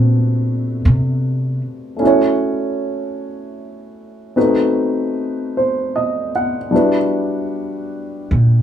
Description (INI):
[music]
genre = jazz ballad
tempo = 51 BPM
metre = 4/4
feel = swing 67% on 8ths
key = unclear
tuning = A4 = 440 Hz
[part]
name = warm grand piano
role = accompaniment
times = 0.0-8.6 s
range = G3 to F#5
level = -17 LUFS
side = equal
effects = none
[part]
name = upright bass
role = bass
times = 0.0-8.6 s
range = Bb2 to C3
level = -14 LUFS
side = equal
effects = none
[sound]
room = wet studio reverb, RT60 0.6 s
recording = band playing live in one room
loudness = -16 LUFS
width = side -9 dB against mid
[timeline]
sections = 0.0-8.6 A section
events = upright bass solo 0.0-8.6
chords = 0.0 Am11; 2.0 F#m7; 4.4 B7b9; 6.7 Em9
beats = 0.83 | 2.01 3.19 4.36 5.54 | 6.72 7.90